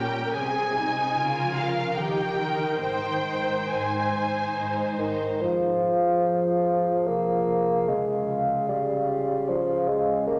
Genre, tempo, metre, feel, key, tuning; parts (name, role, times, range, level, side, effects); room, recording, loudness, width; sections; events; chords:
classical; 69-76 BPM; 3/4; rubato; A4 = 440 Hz
warm symphonic violin section; melody; 0.0-5.0 s; F5 to Ab5; -30 LUFS; equal
warm symphonic violin section; second line; 0.0-5.4 s; Db4 to C5; -36 LUFS; equal
warm symphonic viola section; accompaniment; 0.0-5.0 s; Eb4 to C5; -34 LUFS; equal
concert harp; arpeggios; 0.0-10.4 s; F2 to Db5; -38 LUFS; equal
warm symphonic cello section; bass; 0.0-5.3 s; Ab2 to Eb3; -36 LUFS; equal
dark bassoon; accompaniment; 5.0-10.4 s; Eb3 to Bb3; -27 LUFS; equal
mellow clarinet; second line; 5.4-10.4 s; G4 to Ab4; -35 LUFS; equal
mellow hollow large flute ensemble; second line; 5.4-10.4 s; Eb5 to F5; -31 LUFS; equal
mellow French horn section; sustained chords; 5.4-10.4 s; Db3 to F3; -34 LUFS; equal
wet scoring stage reverb, RT60 1.9 s; -25 LUFS; mono
0.0-5.4 A section; 5.4-10.4 B section
0.4 Ab/C; 1.2 Bbm/Db; 2.0 Eb; 2.8 Ab; 5.4 Fm; 7.9 Db